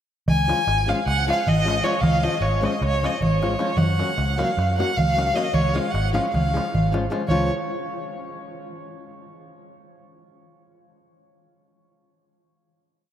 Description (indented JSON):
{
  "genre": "balkan folk, Balkan wedding band",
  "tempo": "308 BPM (eighths)",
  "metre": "9/8",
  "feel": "straight",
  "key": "Db major",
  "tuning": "A4 = 440 Hz",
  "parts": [
    { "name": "clear violin", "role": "melody", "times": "0.3-7.5 s", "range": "Db5 to Ab5", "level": "-24 LUFS", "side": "equal", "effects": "none" },
    { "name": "vintage muted fingered electric bass", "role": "bass", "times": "0.3-7.5 s", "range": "Ab1 to Gb2", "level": "-24 LUFS", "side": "equal", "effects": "none" },
    { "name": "darbuka", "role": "percussion", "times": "0.3-7.5 s", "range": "none", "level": "-26 LUFS", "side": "equal", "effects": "none" },
    { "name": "flamenco guitar", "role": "accompaniment", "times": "0.5-7.5 s", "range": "F3 to Gb4", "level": "-28 LUFS", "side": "left 2 dB", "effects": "none" }
  ],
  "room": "wet cathedral reverb, RT60 5.9 s",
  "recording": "in a vast, echoing space",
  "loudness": "-19 LUFS",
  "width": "side -10 dB against mid",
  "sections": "0.3-7.3 A section; 7.3-9.0 final chord",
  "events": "none",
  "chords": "0.3 Db; 3.8 Gb; 5.5 Db"
}